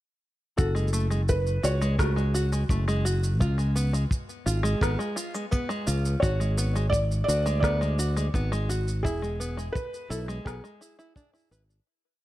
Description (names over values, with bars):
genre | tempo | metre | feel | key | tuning
folktronica | 85 BPM | 4/4 | straight | F# minor | A4 = 439 Hz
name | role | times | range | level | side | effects
felt-muted upright piano | melody | 0.6-11.5 s | F#4 to D5 | -31 LUFS | equal | ping-pong delay
open-back banjo | arpeggios | 0.6-11.6 s | G#3 to B4 | -32 LUFS | equal | ping-pong delay
fingered electric bass | bass | 0.6-11.8 s | E1 to D2 | -26 LUFS | equal | tube saturation
electronic shaker and rim click | drums | 0.6-11.8 s | none | -35 LUFS | right 1 dB | none
kick drum | drums | 0.6-11.3 s | none | -26 LUFS | equal | none
room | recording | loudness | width
small room ambience | dark, warm production | -24 LUFS | side -15 dB against mid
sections
0.6-11.9 groove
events
fade-out 8.1-11.9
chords
0.6 F#madd9; 3.4 C#7; 6.2 G#m7b5; 9.1 E